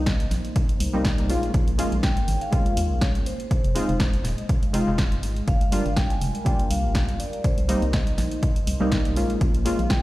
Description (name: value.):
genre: deep house.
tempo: 122 BPM.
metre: 4/4.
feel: swing 55% on 16ths.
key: unclear.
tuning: A4 = 440 Hz.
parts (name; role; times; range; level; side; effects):
vibraphone with soft mallets; melody; 0.0-10.0 s; C5 to Ab5; -33 LUFS; left 1 dB; dub echo.
deep dark ambient pad; sustained chords; 0.0-10.0 s; G3 to Eb5; -35 LUFS; equal; chorus, built-in reverb, sidechain pumping.
organ-like FM bass; bass; 0.0-10.0 s; Eb1 to Eb2; -26 LUFS; equal; sidechain pumping.
electronic kick drum; drums; 0.1-10.0 s; none; -23 LUFS; equal; overdrive.
punchy analog drum machine; drums; 0.1-10.0 s; hi-hat, snare drum; -31 LUFS; equal; overdrive.
warm analog keys; stabs; 0.9-9.8 s; G3 to F4; -27 LUFS; equal; chorus, sidechain pumping, dub echo.
room: light reverb, digital ambience.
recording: played on a big sound system in a bare room, large studio reverb.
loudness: -20 LUFS.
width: side -17 dB against mid.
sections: 0.0-10.0 A section.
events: none.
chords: 0.0 Cm7; 1.3 Bbm7; 3.3 Fm7; 5.5 Gm7; 7.2 Cm7; 9.2 Bbm7.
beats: 0.07 0.56 1.05 | 1.54 2.03 2.53 3.02 | 3.51 4.00 4.49 4.99 | 5.48 5.97 6.46 6.95 | 7.44 7.94 8.43 8.92 | 9.41 9.90.